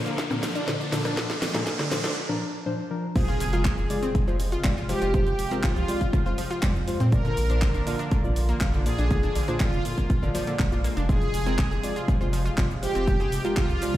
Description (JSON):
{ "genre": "progressive house", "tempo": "121 BPM", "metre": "4/4", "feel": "straight", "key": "F dorian", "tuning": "A4 = 440 Hz", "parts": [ { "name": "warm analog pad", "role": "sustained chords", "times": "0.0-14.0 s", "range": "C3 to F4", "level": "-35 LUFS", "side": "right 1 dB", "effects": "chorus, sidechain pumping" }, { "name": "riser and impact", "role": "sound effects", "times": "0.0-5.1 s", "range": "none", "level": "-34 LUFS", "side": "equal", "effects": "none" }, { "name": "analog pluck", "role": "arpeggios", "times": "0.1-14.0 s", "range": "D3 to Ab4", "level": "-33 LUFS", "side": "equal", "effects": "chorus, vintage 12-bit sampler grit, sidechain pumping, dub echo" }, { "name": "house drum kit", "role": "drums", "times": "0.1-14.0 s", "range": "crash cymbal, handclaps, hi-hat, shaker, snare drum", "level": "-33 LUFS", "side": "equal", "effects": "none" }, { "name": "electronic kick drum", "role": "drums", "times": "0.2-14.0 s", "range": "none", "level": "-24 LUFS", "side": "equal", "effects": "high-pass filter on kick, high-pass filter on room" }, { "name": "deep mellow chord stab", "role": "stabs", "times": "0.3-13.9 s", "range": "Bb2 to F5", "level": "-32 LUFS", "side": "left 1 dB", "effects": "chorus, sidechain pumping, dub echo" }, { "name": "electronic rim click and congas", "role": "percussion", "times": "0.3-1.9 s", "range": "none", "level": "-36 LUFS", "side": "equal", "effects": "sidechain pumping on snare, sidechain pumping on perc" }, { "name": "soft supersaw", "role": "melody", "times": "3.2-14.0 s", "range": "F4 to Bb4", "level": "-32 LUFS", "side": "right 1 dB", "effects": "sidechain pumping, dub echo" }, { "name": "airy dreamy lead", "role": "second line", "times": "3.2-14.0 s", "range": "F4 to Bb4", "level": "-38 LUFS", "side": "left 1 dB", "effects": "chorus, phaser, sidechain pumping, dub echo" }, { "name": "round analog bass", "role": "bass", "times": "3.4-13.8 s", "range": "F1 to Bb2", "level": "-27 LUFS", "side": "equal", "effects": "sidechain pumping" } ], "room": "light reverb", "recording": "played on a big sound system in a bare room, large studio reverb", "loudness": "-22 LUFS", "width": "side -14 dB against mid", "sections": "0.0-3.2 A section; 3.2-14.0 B section", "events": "build-up 0.0-3.2; drum fill 0.0-2.2; riser 0.0-2.2; filter sweep on synth stab 0.0-3.2; break 2.2-3.2; drop 3.2-14.0; impact 3.2-5.1", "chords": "0.0 Bb; 3.2 Fm" }